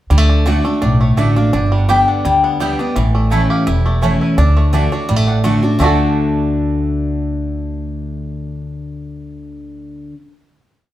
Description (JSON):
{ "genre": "bluegrass", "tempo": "169 BPM", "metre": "4/4", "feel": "straight", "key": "D major", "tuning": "A4 = 440 Hz", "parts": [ { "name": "picked steel-string acoustic guitar", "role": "accompaniment", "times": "0.1-10.1 s", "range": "E2 to G4", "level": "-17 LUFS", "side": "equal", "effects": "none" }, { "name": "bluegrass banjo", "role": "arpeggios", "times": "0.1-10.1 s", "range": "E3 to A4", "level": "-22 LUFS", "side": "right 2 dB", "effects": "none" }, { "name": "upright bass", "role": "bass", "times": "0.1-10.1 s", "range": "E1 to D2", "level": "-17 LUFS", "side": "equal", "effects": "none" }, { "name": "mandolin", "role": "stabs", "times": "0.5-10.1 s", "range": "A3 to A5", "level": "-22 LUFS", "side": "right 3 dB", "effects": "none" }, { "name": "mandolin", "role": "melody", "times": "0.8-10.1 s", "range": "A4 to G5", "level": "-21 LUFS", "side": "left 4 dB", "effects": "plate reverb" } ], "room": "wet studio reverb, RT60 0.7 s", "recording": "heard from further back in the room", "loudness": "-13 LUFS", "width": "side -13 dB against mid", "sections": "0.1-5.8 A section; 5.8-8.6 final chord", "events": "none", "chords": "0.1 D; 1.5 G; 3.0 A; 4.4 D" }